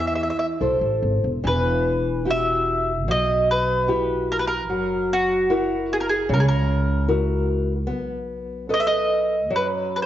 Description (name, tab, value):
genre	fado-style ballad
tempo	74 BPM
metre	4/4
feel	rubato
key	E harmonic minor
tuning	A4 = 440 Hz
part	mandolin	melody	0.0-10.1 s	F#4 to E5	-22 LUFS	right 1 dB	none
part	nylon-string guitar	accompaniment	0.0-10.1 s	B2 to D#5	-24 LUFS	left 1 dB	none
part	upright bass	bass	0.0-10.1 s	E1 to F#2	-26 LUFS	equal	none
room	wet scoring stage reverb, RT60 1.7 s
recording	worn, warbling old tape, cassette tape, warbly pitch drift, nothing above 7.6 kHz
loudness	-19 LUFS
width	side -12 dB against mid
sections	0.0-1.4 A section; 1.4-10.1 B section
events	none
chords	0.0 Am; 1.4 Emadd9; 4.7 F#7; 7.9 B7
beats	0.60 | 1.45 2.27 3.09 3.90 | 4.71 5.50 6.30 7.10 | 7.89 8.70 9.52